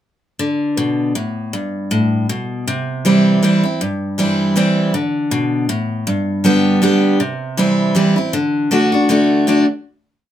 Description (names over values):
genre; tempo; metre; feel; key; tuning
bluegrass; 158 BPM; 3/4; swing 55% on 8ths; D mixolydian; A4 = 440 Hz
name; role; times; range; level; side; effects
picked steel-string acoustic guitar; solo; 0.4-9.7 s; G2 to G4; -14 LUFS; equal; none
room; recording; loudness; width
moderate studio ambience, RT60 0.5 s; minimal, uncompressed stereo recording; -14 LUFS; side -11 dB against mid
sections
0.4-9.5 A section; 9.5-10.3 final chord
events
none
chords
0.4 D5; 1.5 G; 2.7 C; 4.9 D5; 6.1 G; 7.2 C; 8.3 D